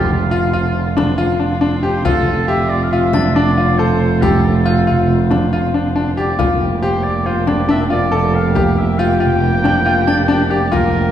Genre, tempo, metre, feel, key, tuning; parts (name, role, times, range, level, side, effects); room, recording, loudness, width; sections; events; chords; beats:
contemporary instrumental, chamber music in an uneven meter; 138 BPM; 5/4; straight; F major; A4 = 441 Hz
clear oboe; melody; 0.0-11.1 s; F4 to G5; -21 LUFS; right 1 dB
muted chamber string section; sustained chords; 0.0-11.1 s; D3 to G4; -24 LUFS; left 2 dB
bright concert grand piano; arpeggios; 0.0-11.0 s; D4 to A4; -17 LUFS; left 3 dB
muted double bass; bass; 0.0-11.1 s; F1; -17 LUFS; right 3 dB
frame drum; percussion; 0.1-11.1 s; -24 LUFS; left 2 dB
glockenspiel with brass mallets; texture; 3.1-5.1, 10.1-10.5 s; G6 to A6; -32 LUFS; left 4 dB
wet recital hall reverb, RT60 1.7 s; heard from further back in the room; -13 LUFS; side -10 dB against mid
0.0-11.1 A section
0.0 F6; 6.4 Gm7/F
0.32 0.76 1.19 1.62 | 2.06 2.49 2.92 3.36 3.79 | 4.22 4.66 5.09 5.53 5.96 | 6.39 6.83 7.26 7.69 8.12 | 8.56 8.99 9.42 9.86 10.29 | 10.72